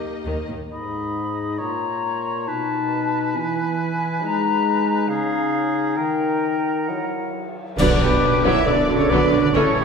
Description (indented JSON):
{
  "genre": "cinematic, heroic adventure film score",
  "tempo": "136 BPM",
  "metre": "4/4",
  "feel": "straight",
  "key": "G# minor",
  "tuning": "A4 = 439 Hz",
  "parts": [
    { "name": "rich symphonic violin section", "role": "melody", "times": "0.0-0.4, 7.8-9.6 s", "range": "B4 to E5", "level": "-32 LUFS", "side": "left 4 dB", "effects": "none" },
    { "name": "warm clarinet", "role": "second line", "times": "0.0-9.8 s", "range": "D4 to G4", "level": "-27 LUFS", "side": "left 3 dB", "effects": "none" },
    { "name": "warm symphonic violin section", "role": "second line", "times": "0.0-0.5, 7.8-9.8 s", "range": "A3 to A4", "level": "-27 LUFS", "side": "left 2 dB", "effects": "none" },
    { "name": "rich symphonic viola section", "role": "accompaniment", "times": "0.0-0.6, 7.8-9.8 s", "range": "D3 to C#4", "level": "-26 LUFS", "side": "right 1 dB", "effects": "none" },
    { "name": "warm symphonic cello section", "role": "bass", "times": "0.3-0.6, 7.8-9.6 s", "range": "D#2 to E3", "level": "-24 LUFS", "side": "right 4 dB", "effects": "none" },
    { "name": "warm symphonic double bass section", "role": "bass", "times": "0.3-0.6, 7.8-9.8 s", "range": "A1 to D#2", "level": "-27 LUFS", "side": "right 2 dB", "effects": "none" },
    { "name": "clear oboe", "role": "second line", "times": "0.7-9.8 s", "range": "G#4 to D6", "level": "-28 LUFS", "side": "right 1 dB", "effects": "none" },
    { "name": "concert flute", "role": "second line", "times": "0.7-9.8 s", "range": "G4 to B5", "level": "-26 LUFS", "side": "left 4 dB", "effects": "none" },
    { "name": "clear trombone section", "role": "sustained chords", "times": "0.7-9.8 s", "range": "F#2 to G#3", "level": "-27 LUFS", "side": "right 2 dB", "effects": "none" },
    { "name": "cymbal swell, clash cymbals and concert bass drum", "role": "percussion", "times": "4.2-8.6 s", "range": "none", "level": "-29 LUFS", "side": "equal", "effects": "none" },
    { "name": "dark French horn section", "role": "sustained chords", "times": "7.8-9.8 s", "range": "B3 to E4", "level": "-26 LUFS", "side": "left 1 dB", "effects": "none" },
    { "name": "warm trumpet section", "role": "stabs", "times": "7.8-9.8 s", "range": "B4 to E5", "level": "-23 LUFS", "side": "right 2 dB", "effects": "none" },
    { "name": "timpani", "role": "percussion", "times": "7.8-8.4 s", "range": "B2", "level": "-28 LUFS", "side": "right 1 dB", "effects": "none" }
  ],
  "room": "wet scoring stage reverb, RT60 1.9 s",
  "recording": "recorded in a church or concert hall",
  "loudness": "-18 LUFS",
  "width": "side -5 dB against mid",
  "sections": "0.7-7.8 A section; 7.8-9.8 B section",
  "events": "band accent 7.8-8.2",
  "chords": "0.0 D#; 0.7 G#m; 1.6 A#m; 2.5 B7; 3.3 E; 4.2 G#madd9; 5.1 C#add9; 6.0 D#; 6.9 F#7; 7.8 Bm"
}